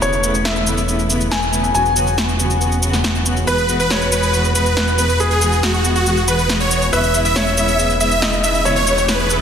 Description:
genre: uplifting trance.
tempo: 139 BPM.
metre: 4/4.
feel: straight.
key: E major.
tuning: A4 = 440 Hz.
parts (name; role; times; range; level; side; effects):
felt-muted upright piano; second line; 0.0-9.4 s; G#4 to G#5; -21 LUFS; left 2 dB; ping-pong delay.
warm studio string section; sustained chords; 0.0-9.4 s; C#3 to F#4; -22 LUFS; equal; none.
fat analog bass; bass; 0.0-9.4 s; E1; -20 LUFS; equal; none.
electronic shaker and snare drum; drums; 0.0-9.4 s; none; -21 LUFS; equal; none.
downlifter and riser; sound effects; 0.0, 8.0-9.4 s; none; -32 LUFS; left 1 dB; none.
supersaw chords; melody; 3.5-9.3 s; F#4 to E5; -18 LUFS; right 1 dB; low-pass filter, ping-pong delay.
room: moderate lush hall reverb, RT60 2.3 s.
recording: dense, heavily limited modern master.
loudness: -14 LUFS.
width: side -8 dB against mid.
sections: 0.0-9.4 A section.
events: none.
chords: 0.0 Aadd9/E; 1.7 Bsus2/E; 3.5 Eadd9; 6.9 C#m7/E.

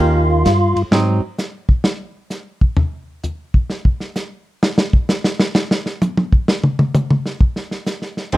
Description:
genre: soul jazz organ trio.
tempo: 130 BPM.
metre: 4/4.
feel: swing 67% on 8ths.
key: unclear.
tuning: A4 = 438 Hz.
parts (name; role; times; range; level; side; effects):
percussive tonewheel organ; melody; 0.0-0.8 s; F4; -17 LUFS; equal; slow rotary speaker, overdrive, chorus vibrato.
archtop guitar, miked and amplified; accompaniment; 0.0-1.2, 8.3-8.4 s; Eb3 to G4; -19 LUFS; right 3 dB; none.
mellow tonewheel organ; bass; 0.0-1.2, 8.3-8.4 s; Eb2 to Ab2; -16 LUFS; equal; slow rotary speaker.
warm soul drum kit; drums; 0.5-8.4 s; hi-hat, kick drum, ride cymbal, snare drum, toms; -16 LUFS; equal; none.
room: light reverb.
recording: close, detailed microphones.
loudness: -15 LUFS.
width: side -16 dB against mid.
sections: 0.0-8.4 A section.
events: tonewheel organ solo 0.0-8.4; drum solo 0.9-8.3.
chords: 0.0 Eb7; 0.9 Ab7; 2.8 N.C..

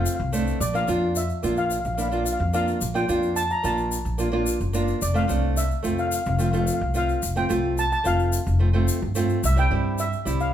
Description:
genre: calypso.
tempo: 109 BPM.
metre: 4/4.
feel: straight.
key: F major.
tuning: A4 = 440 Hz.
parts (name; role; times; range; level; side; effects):
steel pan; melody; 0.0-10.5 s; D5 to Bb5; -27 LUFS; equal; none.
nylon-string guitar; accompaniment; 0.0-10.5 s; G3 to F4; -26 LUFS; right 1 dB; none.
upright bass; bass; 0.0-10.5 s; F1 to G2; -24 LUFS; equal; none.
egg shaker; percussion; 0.1-10.5 s; none; -34 LUFS; left 6 dB; none.
room: wet large studio reverb, RT60 0.9 s.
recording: band playing live in one room.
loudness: -21 LUFS.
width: side -10 dB against mid.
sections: 0.0-10.5 A section.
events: none.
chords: 0.0 F6; 0.6 Bbmaj7; 5.0 F; 9.4 C.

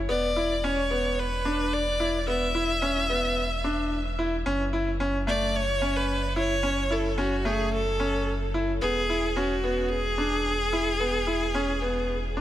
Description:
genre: piano and strings electronica.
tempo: 110 BPM.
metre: 4/4.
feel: straight.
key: unclear.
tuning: A4 = 443 Hz.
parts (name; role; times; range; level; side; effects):
warm sub bass; bass; 0.0-12.4 s; E1 to F#1; -32 LUFS; equal; none.
clear viola; melody; 0.1-12.4 s; F#4 to E5; -27 LUFS; equal; none.
bright grand piano; riff; 0.1-12.4 s; A3 to E4; -28 LUFS; equal; none.
room: moderate huge ambient reverb, RT60 7.4 s.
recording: none.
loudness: -24 LUFS.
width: side -12 dB against mid.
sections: 0.0-12.4 A section.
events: none.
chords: 0.1 E5; 4.5 F#m7; 8.8 E.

